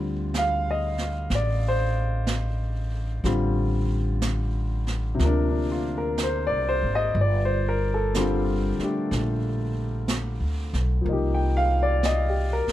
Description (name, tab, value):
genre	jazz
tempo	62 BPM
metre	4/4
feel	swing 67% on 8ths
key	unclear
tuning	A4 = 440 Hz
part	warm upright piano	accompaniment	0.0-12.7 s	C3 to G5	-26 LUFS	left 2 dB	none
part	upright bass	bass	0.0-12.7 s	G1 to D2	-25 LUFS	equal	none
part	jazz brush drum kit	drums	0.3-12.7 s	brushed snare drum, hi-hat, snare drum	-32 LUFS	right 3 dB	none
room	little or no reverb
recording	dark, warm production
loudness	-22 LUFS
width	side -13 dB against mid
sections	0.0-12.7 A section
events	none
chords	0.0 F69/A; 5.2 Bb9; 7.2 Gm9; 11.1 Cm7